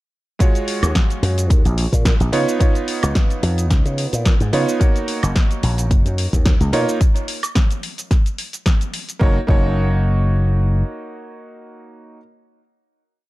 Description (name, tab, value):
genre	nu-disco, nu disco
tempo	109 BPM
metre	4/4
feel	swing 54% on 16ths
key	F# major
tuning	A4 = 440 Hz
part	bright electric grand piano	accompaniment	0.4-12.2 s	G#3 to C#5	-24 LUFS	right 2 dB	sidechain pumping, tape echo
part	electronic kick drum	drums	0.4-9.7 s	none	-15 LUFS	equal	none
part	house drum kit	drums	0.4-9.2 s	cabasa, hi-hat, snare drum, woodblock	-25 LUFS	equal	none
part	slap bass with an envelope filter	bass	0.8-10.8 s	F#1 to C#3	-18 LUFS	equal	none
room	digital ambience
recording	dark, warm production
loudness	-15 LUFS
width	side -18 dB against mid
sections	0.4-9.2 drop; 9.2-11.4 final chord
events	drop 0.4-9.2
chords	0.4 D#m11 (rootless); 2.3 C#9; 4.8 F#6; 6.7 Bmaj9#11; 9.2 F#6